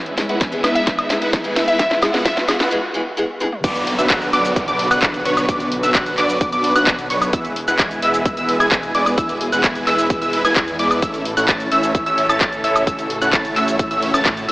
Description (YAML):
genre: EDM, festival progressive house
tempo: 130 BPM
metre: 4/4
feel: straight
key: unclear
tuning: A4 = 439 Hz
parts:
  - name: dark studio string section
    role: sustained chords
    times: 0.0-14.5 s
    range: B2 to F#5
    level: -27 LUFS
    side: equal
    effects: sidechain pumping
  - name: supersaw chords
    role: riff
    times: 0.0-14.5 s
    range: F#3 to A5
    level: -22 LUFS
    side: equal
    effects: phaser, sidechain pumping, low-pass filter, dub echo
  - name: riser and downlifter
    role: sound effects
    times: 0.0-7.3 s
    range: none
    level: -27 LUFS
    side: equal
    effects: none
  - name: house drum kit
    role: drums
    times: 0.1-14.5 s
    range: crash cymbal, handclaps, hi-hat, shaker, snare drum, toms, woodblock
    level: -21 LUFS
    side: equal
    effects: overdrive
  - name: picked steel-string acoustic guitar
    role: accompaniment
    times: 0.2-3.5 s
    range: E3 to G#4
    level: -24 LUFS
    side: equal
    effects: sidechain pumping, dub echo
  - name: electronic kick drum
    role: drums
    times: 0.4-14.3 s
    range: none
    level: -22 LUFS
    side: equal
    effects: overdrive
  - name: glassy wavetable pluck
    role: melody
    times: 0.8-2.3 s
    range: E5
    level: -23 LUFS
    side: left 1 dB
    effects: chorus, dub echo
  - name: wide unison pluck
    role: arpeggios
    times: 3.6-14.5 s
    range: C#6 to A6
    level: -20 LUFS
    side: equal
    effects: sidechain pumping, dub echo
  - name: wide detuned saw bass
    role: bass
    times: 3.6-14.5 s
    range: E1 to A2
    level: -28 LUFS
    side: equal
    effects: chorus, sidechain pumping
room: moderate lush hall reverb, RT60 1.9 s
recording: high-pass filter, AM radio sound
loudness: -15 LUFS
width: side -20 dB against mid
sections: 0.0-3.6 A section; 3.6-14.5 B section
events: build-up 0.0-3.6; drum fill 0.0-2.7, 3.4; riser 0.0-2.7; break 2.7-3.6; drop 3.6-14.5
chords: 0.0 E; 3.6 Bm; 7.3 E; 11.0 A